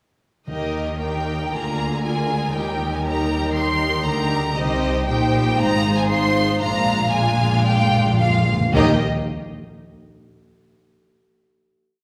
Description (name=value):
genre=quick classical-period movement for symphony orchestra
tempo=117 BPM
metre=4/4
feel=rubato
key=Eb major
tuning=A4 = 440 Hz
part: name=rich studio violin section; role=melody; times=0.5-9.0 s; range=Eb5 to C6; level=-26 LUFS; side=equal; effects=none
part: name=rich studio violin section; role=second line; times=0.5-9.0 s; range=F4 to F5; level=-28 LUFS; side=equal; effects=none
part: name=rich studio viola section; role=accompaniment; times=0.5-9.0 s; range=G3 to F4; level=-28 LUFS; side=equal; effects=none
part: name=rich studio double bass section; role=bass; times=0.5-9.0 s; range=Ab1 to Eb2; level=-27 LUFS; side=equal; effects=none
part: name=warm studio cello section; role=bass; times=0.5-9.0 s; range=Ab2 to Eb3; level=-28 LUFS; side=equal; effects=none
part: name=timpani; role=percussion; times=0.5-1.2, 6.6-9.0 s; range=Bb2 to Eb3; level=-28 LUFS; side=equal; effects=none
room=wet recital hall reverb, RT60 1.6 s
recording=recorded in a church or concert hall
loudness=-20 LUFS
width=mono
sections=0.5-8.7 theme; 8.7-10.9 final chord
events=timpani fill 6.6-8.7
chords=0.5 Eb; 1.5 Bb7/D; 2.5 Eb; 4.6 Cm; 5.6 Fm7/Ab; 6.6 Bb7; 8.7 Eb5